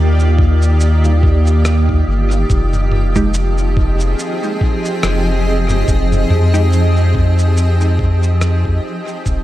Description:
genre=ambient dub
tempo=71 BPM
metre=4/4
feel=swing 56% on 16ths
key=F dorian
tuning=A4 = 442 Hz
part: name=granular cloud pad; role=sustained chords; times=0.0-9.4 s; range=Eb3 to Eb5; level=-20 LUFS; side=right 1 dB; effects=built-in reverb
part: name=warm sub bass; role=bass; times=0.0-9.4 s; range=Eb1 to F2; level=-13 LUFS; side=equal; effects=none
part: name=wind-like tuned noise texture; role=texture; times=0.0-9.4 s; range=Eb4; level=-26 LUFS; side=equal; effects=built-in reverb
part: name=lo-fi sampler-style drum kit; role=drums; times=0.2-9.4 s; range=rim click, shaker, toms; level=-23 LUFS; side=equal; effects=studio reverb, dub echo
part: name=electronic kick drum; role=drums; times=0.4-9.4 s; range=none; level=-16 LUFS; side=equal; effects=studio reverb
part: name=filtered dub chord stab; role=stabs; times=3.2-6.7 s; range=Ab3 to G4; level=-23 LUFS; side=right 2 dB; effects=phaser, dub echo
room=digital ambience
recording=none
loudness=-12 LUFS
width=side -14 dB against mid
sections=0.0-9.4 A section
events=fade-out 7.0-9.4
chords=0.0 Ebmaj7; 2.5 Fm7

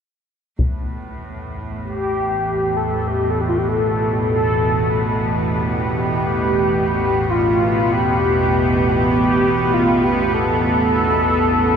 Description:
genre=dark ambient drone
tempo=50 BPM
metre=4/4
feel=straight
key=unclear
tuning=A4 = 436 Hz
part: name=rich chamber cello section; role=sustained chords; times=0.6-11.8 s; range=A2 to B3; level=-21 LUFS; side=right 1 dB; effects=shimmer reverb
part: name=bowed-like drone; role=drone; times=1.3-11.8 s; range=A1 to E2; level=-23 LUFS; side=right 1 dB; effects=built-in reverb
part: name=solo taiko drums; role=percussion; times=0.6-0.8 s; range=none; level=-24 LUFS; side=left 1 dB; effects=low-pass filter on perc
part: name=bubbling stepped-filter texture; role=texture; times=0.6-11.8 s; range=B3 to B4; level=-32 LUFS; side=left 1 dB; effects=none
part: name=mellow horn-like synth lead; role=melody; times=1.8-11.8 s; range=F4 to A4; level=-19 LUFS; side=left 1 dB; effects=analog chorus, shimmer reverb, tape echo
room=wet cathedral reverb, RT60 5.4 s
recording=none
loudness=-16 LUFS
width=side -7 dB against mid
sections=0.6-11.8 A section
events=filter sweep on synth drone 0.6-11.8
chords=0.6 Asus2

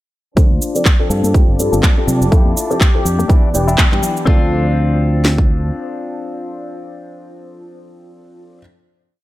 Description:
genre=filtered disco house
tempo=123 BPM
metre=4/4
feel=swing 56% on 16ths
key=D dorian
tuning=A4 = 440 Hz
part: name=warm baby grand piano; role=accompaniment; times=0.4-8.6 s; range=E3 to A4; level=-23 LUFS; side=left 1 dB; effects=phaser, sidechain pumping, low-pass filter
part: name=bright studio violin section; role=sustained chords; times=0.4-4.3 s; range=D4 to D5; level=-31 LUFS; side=right 2 dB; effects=sidechain pumping, low-pass filter
part: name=direct-recorded clean electric guitar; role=riff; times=0.4-8.6 s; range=C4 to C5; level=-24 LUFS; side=left 4 dB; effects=vintage 12-bit sampler grit, sidechain pumping, low-pass filter
part: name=fingered electric bass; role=bass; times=0.4-5.7 s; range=E1 to C3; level=-17 LUFS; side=equal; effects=sidechain pumping, low-pass filter
part: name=electronic shaker and handclaps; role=drums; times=0.4-4.3 s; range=none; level=-20 LUFS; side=right 1 dB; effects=sidechain pumping on perc
part: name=house drum kit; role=drums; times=0.4-5.5 s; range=kick drum, snare drum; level=-12 LUFS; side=equal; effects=none
part: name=tambourine and congas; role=percussion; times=0.4-4.3 s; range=none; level=-27 LUFS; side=left 4 dB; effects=none
part: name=mellow trumpet section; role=melody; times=0.8-3.4 s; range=G4 to D5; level=-27 LUFS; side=left 3 dB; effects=vintage 12-bit sampler grit, sidechain pumping, low-pass filter, tape echo
room=studio reverb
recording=none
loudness=-12 LUFS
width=side -16 dB against mid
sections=0.4-4.3 breakdown; 4.3-8.2 final chord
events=filter sweep 0.4-4.3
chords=0.4 Dm7; 1.1 G9sus4; 2.3 Fmaj7; 3.3 Em7; 4.3 Dm7

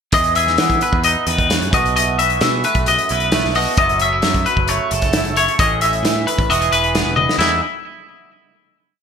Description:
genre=math rock and midwest emo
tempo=132 BPM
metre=4/4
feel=straight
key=E major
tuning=A4 = 440 Hz
part: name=twangy electric guitar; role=accompaniment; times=0.1-7.6 s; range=F#2 to A4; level=-22 LUFS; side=right 9 dB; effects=wide subtle chorus
part: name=twangy electric guitar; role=arpeggios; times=0.1-7.6 s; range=E4 to E5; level=-17 LUFS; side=left 4 dB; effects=lush chorus, ping-pong delay
part: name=modern bright picked electric bass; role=bass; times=0.1-7.6 s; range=E1 to E3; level=-23 LUFS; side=right 1 dB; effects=none
part: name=loose indie drum kit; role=drums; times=0.1-7.5 s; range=china cymbal, hi-hat, kick drum, snare drum, toms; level=-20 LUFS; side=equal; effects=gated reverb
room=moderate plate reverb, RT60 1.5 s, small room ambience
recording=bright 1980s-style digital production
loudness=-14 LUFS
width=side -7 dB against mid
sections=0.1-7.4 A section; 7.4-9.0 final chord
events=drum fill 7.2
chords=0.1 Emaj7; 1.7 B7sus4; 3.8 F#m7; 5.6 Amaj7; 6.5 Emaj7

